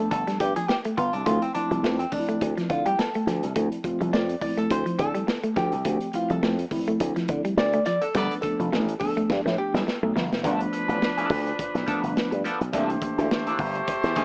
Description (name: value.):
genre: funk.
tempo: 105 BPM.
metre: 4/4.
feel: swing 56% on 16ths.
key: unclear.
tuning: A4 = 439 Hz.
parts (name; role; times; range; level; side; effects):
vintage hollow-body jazz guitar; accompaniment; 0.0-14.2 s; F3 to D5; -31 LUFS; equal; wah, cassette tape.
semi-hollow electric guitar; riff; 0.0-10.3 s; F3 to B3; -31 LUFS; equal; cassette tape.
mellow tine electric piano; stabs; 0.0-14.2 s; E3 to G4; -33 LUFS; equal; cassette tape.
slap bass with an envelope filter; bass; 0.1-14.1 s; F1 to D3; -29 LUFS; equal; none.
crunchy breakbeat drum kit; drums; 0.1-14.2 s; hi-hat, kick drum, snare drum; -33 LUFS; equal; cassette tape.
clear horn section; second line; 8.2-14.2 s; F3 to D5; -32 LUFS; equal; cassette tape.
room: light reverb, small room ambience.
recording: home recording on cassette, small speaker sound.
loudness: -25 LUFS.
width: mono.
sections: 0.0-10.4 A section; 10.4-14.2 B section.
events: hollow-body jazz guitar solo 0.0-10.4; band accent 8.2-10.4; drum fill 9.3-10.4.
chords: 0.0 G9; 1.3 Dm9; 8.2 G9; 12.7 C13.